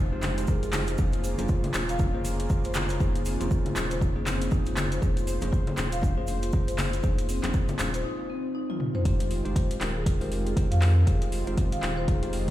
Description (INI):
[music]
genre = afro house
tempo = 119 BPM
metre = 4/4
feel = swing 59% on 16ths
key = F minor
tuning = A4 = 440 Hz
[part]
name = warm analog pad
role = sustained chords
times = 0.0-12.5 s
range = C3 to C5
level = -36 LUFS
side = right 2 dB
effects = wide subtle chorus, sidechain pumping
[part]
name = marimba with soft mallets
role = arpeggios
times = 0.0-12.5 s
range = C4 to F5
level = -34 LUFS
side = left 1 dB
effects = sidechain pumping, low-pass filter, dub echo
[part]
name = warm sub bass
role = bass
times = 0.0-12.5 s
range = Eb1 to F2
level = -29 LUFS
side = equal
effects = sidechain pumping
[part]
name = bell-like tine electric piano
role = stabs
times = 0.1-12.5 s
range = Ab3 to C5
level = -35 LUFS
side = equal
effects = auto-pan, sidechain pumping, dub echo
[part]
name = deep house drum kit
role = drums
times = 0.2-12.5 s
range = handclaps, hi-hat, toms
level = -34 LUFS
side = equal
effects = overdrive
[part]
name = congas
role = percussion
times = 0.2-7.9 s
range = none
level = -35 LUFS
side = left 2 dB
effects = none
[part]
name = egg shaker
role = percussion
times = 0.2-8.0 s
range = none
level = -45 LUFS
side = right 4 dB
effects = none
[part]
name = electronic kick drum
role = drums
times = 0.5-12.5 s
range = none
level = -26 LUFS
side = equal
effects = overdrive
[sound]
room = digital ambience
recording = played on a big sound system in a bare room, large studio reverb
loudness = -24 LUFS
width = side -14 dB against mid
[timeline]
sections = 0.0-9.1 A section; 9.1-12.5 B section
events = filter sweep on marimba 0.0-9.1; break 8.0-9.1; drum fill 8.7-9.1; drop 9.1-12.5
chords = 0.0 Fm7; 1.0 Bbm7; 9.1 Fm7